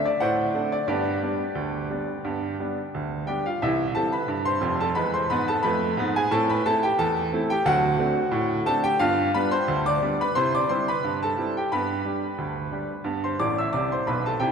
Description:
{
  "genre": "ragtime piano",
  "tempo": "89 BPM",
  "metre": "2/4",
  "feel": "swing 55% on 16ths",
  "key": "unclear",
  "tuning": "A4 = 440 Hz",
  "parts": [
    { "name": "bright upright piano", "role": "solo", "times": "0.0-14.5 s", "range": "F1 to E6", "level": "-22 LUFS", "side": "equal", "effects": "none" }
  ],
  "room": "wet church reverb, RT60 3.1 s",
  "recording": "recorded in a church or concert hall",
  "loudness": "-22 LUFS",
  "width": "side -6 dB against mid",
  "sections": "0.0-3.6 A section; 3.6-14.5 B section",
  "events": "upright piano fill 13.4-14.4",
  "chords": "0.0 D7; 0.9 G; 3.6 C; 5.0 E; 6.3 Am; 7.7 D7; 9.0 G7; 10.3 C; 11.7 G"
}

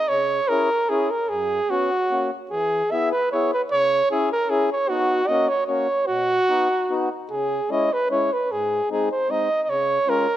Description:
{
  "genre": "alpine folk",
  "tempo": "151 BPM",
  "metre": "3/4",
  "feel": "swing 54% on 8ths, rubato",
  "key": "unclear",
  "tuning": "A4 = 440 Hz",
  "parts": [
    { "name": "mellow flugelhorn", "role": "melody", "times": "0.0-10.4 s", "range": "F#4 to E5", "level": "-20 LUFS", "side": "right 2 dB", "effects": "none" },
    { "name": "mellow accordion", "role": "accompaniment", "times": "0.1-10.3 s", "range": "F#2 to G#4", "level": "-26 LUFS", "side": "left 4 dB", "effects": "none" }
  ],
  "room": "moderate scoring stage reverb, RT60 1.5 s",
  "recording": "none",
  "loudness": "-19 LUFS",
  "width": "side -12 dB against mid",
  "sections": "0.0-10.4 A section",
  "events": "none",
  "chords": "0.1 C#m; 1.3 F#sus4; 2.1 F#; 2.5 E; 3.7 C#m; 4.9 B; 5.3 F#; 6.1 B; 7.3 C#m; 8.5 G#; 9.7 C#"
}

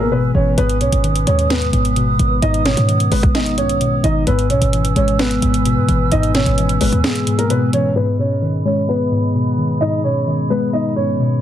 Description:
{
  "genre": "hip hop, trap",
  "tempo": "130 BPM",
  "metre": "4/4",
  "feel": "half-time",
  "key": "G# minor",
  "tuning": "A4 = 440 Hz",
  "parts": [
    { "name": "dark concert grand piano", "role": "melody", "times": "0.0-11.4 s", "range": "G#3 to D#5", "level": "-20 LUFS", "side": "right 1 dB", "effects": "low-pass filter" },
    { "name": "muted felt-like synth keys", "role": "accompaniment", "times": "0.0-11.4 s", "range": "G#2 to B3", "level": "-18 LUFS", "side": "left 2 dB", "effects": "chorus, low-pass filter" },
    { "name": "breathy mellow flute section", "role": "sustained chords", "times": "0.0-11.4 s", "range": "G#4 to E6", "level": "-25 LUFS", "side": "right 5 dB", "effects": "low-pass filter" },
    { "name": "short 808-style bass", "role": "bass", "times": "0.0-7.0 s", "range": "G#1 to G#2", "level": "-19 LUFS", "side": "equal", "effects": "none" },
    { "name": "trap drum kit", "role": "drums", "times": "0.6-7.8 s", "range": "hi-hat, kick drum, snare drum", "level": "-21 LUFS", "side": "right 1 dB", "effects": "vintage 12-bit sampler grit" }
  ],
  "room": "little or no reverb",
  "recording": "dense, heavily limited modern master",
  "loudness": "-14 LUFS",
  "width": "side -11 dB against mid",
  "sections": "0.0-8.0 A section; 8.0-11.4 B section",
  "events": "break 0.0-0.6; kick muted 7.0-8.0; filter sweep 8.0-11.4",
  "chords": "0.0 E/G#; 0.6 G#m; 4.3 E/G#; 8.0 G#m"
}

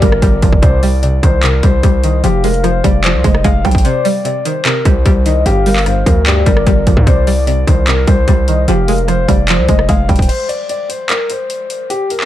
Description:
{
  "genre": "hip hop, trap",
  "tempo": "149 BPM",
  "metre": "4/4",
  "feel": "half-time",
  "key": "C minor",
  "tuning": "A4 = 441 Hz",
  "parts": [
    { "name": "dark baby grand piano", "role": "melody", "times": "0.0-12.3 s", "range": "G4 to G5", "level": "-18 LUFS", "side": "left 3 dB", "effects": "none" },
    { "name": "warm velvety synth lead", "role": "second line", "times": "0.0-9.9 s", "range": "C5 to F5", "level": "-23 LUFS", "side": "left 4 dB", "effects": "chorus, ping-pong delay" },
    { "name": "string-like resonator pluck", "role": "accompaniment", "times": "0.0-10.3 s", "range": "G2 to Ab3", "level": "-18 LUFS", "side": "right 1 dB", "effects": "chorus, phaser" },
    { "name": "distorted 808-style bass", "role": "bass", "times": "0.0-10.3 s", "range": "Eb1 to G2", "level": "-14 LUFS", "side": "equal", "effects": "distortion" },
    { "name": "trap drum kit", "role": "drums", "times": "0.0-12.3 s", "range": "crash cymbal, handclaps, hi-hat, kick drum, rim click", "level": "-14 LUFS", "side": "equal", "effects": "overdrive" }
  ],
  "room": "little or no reverb",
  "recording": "dark, warm production",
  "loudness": "-10 LUFS",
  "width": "side -13 dB against mid",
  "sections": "0.0-10.3 A section; 10.3-12.3 B section",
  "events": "break 3.8-4.7, 10.3-12.3",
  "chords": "0.0 Gm7; 0.6 Cmadd9; 2.2 Fmadd9; 3.8 Cmadd9; 5.5 Gm7; 7.1 Cmadd9; 8.7 Fmadd9; 10.3 N.C."
}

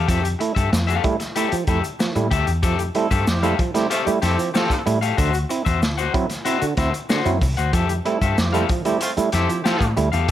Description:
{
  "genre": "funk",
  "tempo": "94 BPM",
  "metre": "4/4",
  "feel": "straight",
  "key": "unclear",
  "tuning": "A4 = 440 Hz",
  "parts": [
    { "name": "electric guitar at the edge of break-up", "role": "accompaniment", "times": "0.0-10.3 s", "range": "F#4 to F#5", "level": "-24 LUFS", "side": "left 8 dB", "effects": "none" },
    { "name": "vintage muted picked electric bass", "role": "bass", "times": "0.0-10.3 s", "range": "C2 to A2", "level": "-22 LUFS", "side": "equal", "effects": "none" },
    { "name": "mellow clav", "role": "stabs", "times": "0.1-10.3 s", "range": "D3 to E4", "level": "-23 LUFS", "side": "right 4 dB", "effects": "none" },
    { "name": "crunchy breakbeat drum kit", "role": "drums", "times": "0.1-10.3 s", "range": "hi-hat, kick drum, snare drum", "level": "-24 LUFS", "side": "equal", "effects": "none" },
    { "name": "tube shaker", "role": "percussion", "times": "0.1-10.3 s", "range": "none", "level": "-39 LUFS", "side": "left 3 dB", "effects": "none" },
    { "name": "clear horn section", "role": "second line", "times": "3.0-9.9 s", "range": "A3 to A4", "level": "-26 LUFS", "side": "right 3 dB", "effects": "none" }
  ],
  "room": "light reverb, studio reverb",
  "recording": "none",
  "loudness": "-18 LUFS",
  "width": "side -12 dB against mid",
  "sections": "0.0-10.3 A section",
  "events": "none",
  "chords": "0.0 Fmaj9; 5.2 D9; 7.7 Fmaj9"
}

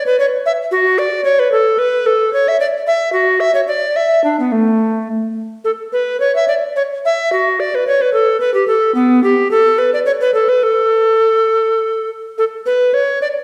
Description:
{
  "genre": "classical, baroque-style fantasia for unaccompanied recorder",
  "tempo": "101-114 BPM",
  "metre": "3/4",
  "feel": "rubato",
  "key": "unclear",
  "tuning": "A4 = 443 Hz",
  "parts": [
    { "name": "bright bass recorder", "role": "solo", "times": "0.0-13.3 s", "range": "A3 to E5", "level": "-15 LUFS", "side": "equal", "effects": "none" }
  ],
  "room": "wet recital hall reverb, RT60 1.4 s",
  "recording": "recorded in a church or concert hall",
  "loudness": "-15 LUFS",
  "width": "mono",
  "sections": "0.0-12.4 A section; 12.4-13.4 B section",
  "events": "none",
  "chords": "none"
}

